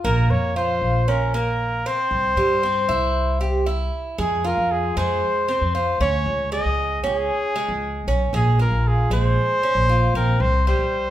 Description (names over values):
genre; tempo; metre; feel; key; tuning
latin, Cuban son and guajira; 116 BPM; 4/4; straight; F minor; A4 = 440 Hz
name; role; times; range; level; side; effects
warm trumpet; melody; 0.0-11.1 s; Ab4 to Eb5; -22 LUFS; left 1 dB; none
Cuban tres; arpeggios; 0.0-11.1 s; G3 to G4; -25 LUFS; right 3 dB; none
upright bass; bass; 0.0-11.1 s; Bb1 to G2; -22 LUFS; equal; none
room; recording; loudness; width
wet large studio reverb, RT60 1.2 s; heard from further back in the room; -18 LUFS; side -12 dB against mid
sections
0.0-4.2 A section; 4.2-11.1 B section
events
none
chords
0.0 Bbm; 2.1 C; 4.2 Fm; 6.3 Dbsus2; 8.3 Bbm7; 10.4 C5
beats
| 0.04 0.56 1.07 1.59 | 2.11 2.63 3.15 3.66 | 4.18 4.70 5.22 5.74 | 6.26 6.78 7.30 7.82 | 8.33 8.85 9.37 9.89 | 10.40 10.92